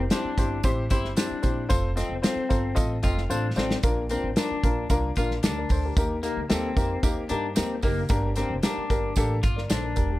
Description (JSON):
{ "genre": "uptempo 1960s-style soul", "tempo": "113 BPM", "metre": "4/4", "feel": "straight", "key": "Bb major", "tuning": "A4 = 440 Hz", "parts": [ { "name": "warm baby grand piano", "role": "accompaniment", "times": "0.0-10.2 s", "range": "Bb3 to Bb5", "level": "-29 LUFS", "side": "left 2 dB", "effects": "none" }, { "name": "upright bass", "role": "bass", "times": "0.0-10.2 s", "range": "E1 to G2", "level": "-29 LUFS", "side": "equal", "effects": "none" }, { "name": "electric guitar through a small old amp", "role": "riff", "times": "0.1-10.2 s", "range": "Bb3 to F4", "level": "-32 LUFS", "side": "left 4 dB", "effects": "spring reverb" }, { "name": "natural country drum kit", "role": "drums", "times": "0.1-10.1 s", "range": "hi-hat, kick drum, snare drum", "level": "-26 LUFS", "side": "equal", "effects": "none" }, { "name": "tambourine", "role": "percussion", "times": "0.1-10.1 s", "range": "none", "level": "-40 LUFS", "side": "right 11 dB", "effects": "none" } ], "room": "light reverb", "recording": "none", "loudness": "-23 LUFS", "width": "side -16 dB against mid", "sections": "0.0-10.2 A section", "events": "grand piano fill 2.2-3.8; drum fill 3.3-3.8", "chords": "0.0 C; 1.7 F; 3.8 Bb; 6.0 Eb; 8.1 Gm" }